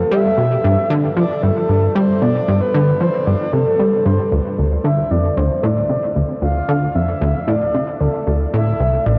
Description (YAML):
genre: ambient, sequencer-driven space music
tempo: 114 BPM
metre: 4/4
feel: straight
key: D minor from 4.3 s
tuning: A4 = 444 Hz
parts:
  - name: breathy flute-like synth lead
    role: melody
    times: 0.0-9.2 s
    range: A4 to F5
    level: -22 LUFS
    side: equal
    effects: lush chorus, tape echo
  - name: plucky analog bass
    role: riff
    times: 0.0-9.2 s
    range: A1 to G3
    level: -19 LUFS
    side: equal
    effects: lush chorus, tape echo
room: wet huge ambient reverb, RT60 8.3 s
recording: worn, warbling old tape, cassette tape, warbly pitch drift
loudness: -17 LUFS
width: mono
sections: 0.0-4.3 A section; 4.3-9.2 B section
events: none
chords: 0.1 Gsus4; 4.3 Dm; 8.5 Am